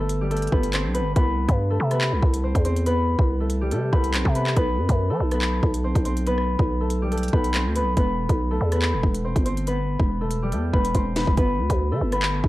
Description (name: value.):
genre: hip hop, drill.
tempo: 141 BPM.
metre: 4/4.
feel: half-time.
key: unclear.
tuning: A4 = 440 Hz.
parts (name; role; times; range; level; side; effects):
concert harp; melody; 0.0-12.5 s; G3 to C5; -26 LUFS; left 1 dB; none.
growling 808-style bass; bass; 0.0-12.5 s; D1 to F#3; -23 LUFS; equal; none.
drill drum kit; drums; 0.1-12.5 s; handclaps, hi-hat, kick drum, rim click, snare drum; -23 LUFS; equal; none.
room: little or no reverb.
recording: dry, gritty hardware recording, cassette tape.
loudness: -20 LUFS.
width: side -17 dB against mid.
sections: 0.0-12.5 A section.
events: drum fill 10.9-11.4.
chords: 0.0 Gadd9; 1.2 C; 4.6 B7(no3); 8.0 Em; 11.4 Gadd9.